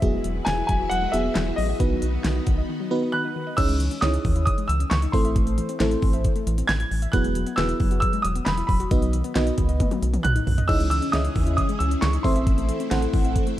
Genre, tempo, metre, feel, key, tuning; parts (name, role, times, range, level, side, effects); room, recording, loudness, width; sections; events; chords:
synth-pop; 135 BPM; 4/4; straight; E major; A4 = 440 Hz
clear grand piano; melody; 0.0-13.5 s; D#5 to G#6; -28 LUFS; right 1 dB; tape echo
FM electric piano with soft pad layer; accompaniment; 0.0-13.4 s; A3 to B5; -28 LUFS; right 1 dB; chorus
string machine, violins; sustained chords; 0.0-3.6, 10.7-13.6 s; C#3 to B4; -32 LUFS; equal; ensemble chorus
soft round pluck; arpeggios; 0.0-13.6 s; D#3 to E5; -32 LUFS; left 6 dB; chorus, tape echo
rubbery square bass; bass; 0.0-13.4 s; E1 to D#2; -25 LUFS; equal
pop drum kit; drums; 0.0-13.6 s; crash cymbal, handclaps, hi-hat, kick drum, snare drum, toms; -24 LUFS; equal
light reverb, digital ambience; dark, warm production; -20 LUFS; side -14 dB against mid
0.0-3.6 A section; 3.6-13.6 B section
break 2.7-3.6; FM electric piano fill 2.9-3.6; drum fill 9.8-10.7
0.0 Eadd9; 1.8 B; 3.6 C#madd9; 5.1 Am; 7.1 Eadd9; 8.9 B; 10.7 C#madd9; 12.2 Am